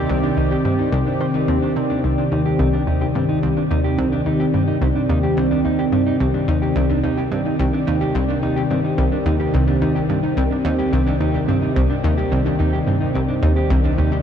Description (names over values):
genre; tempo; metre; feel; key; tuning
ambient, sequencer-driven space music; 108 BPM; 4/4; straight; C minor; A4 = 439 Hz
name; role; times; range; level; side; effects
sweeping resonant pad; sustained chords; 0.0-14.2 s; C3 to D5; -20 LUFS; left 1 dB; chorus
mellow electric guitar; arpeggios; 0.0-14.2 s; C4 to C5; -25 LUFS; right 2 dB; auto-pan, tape echo
analog pluck; riff; 0.0-14.2 s; C2 to Eb3; -20 LUFS; equal; chorus, tape echo
room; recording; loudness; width
moderate huge ambient reverb, RT60 8.1 s; dark, warm production; -16 LUFS; side -8 dB against mid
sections
0.0-14.2 A section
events
none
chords
0.0 Cmadd9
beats
0.37 0.93 1.48 | 2.04 2.59 3.15 3.70 | 4.26 4.82 5.37 5.93 | 6.48 7.04 7.59 8.15 | 8.70 9.26 9.81 10.37 | 10.93 11.48 12.04 12.59 | 13.15 13.70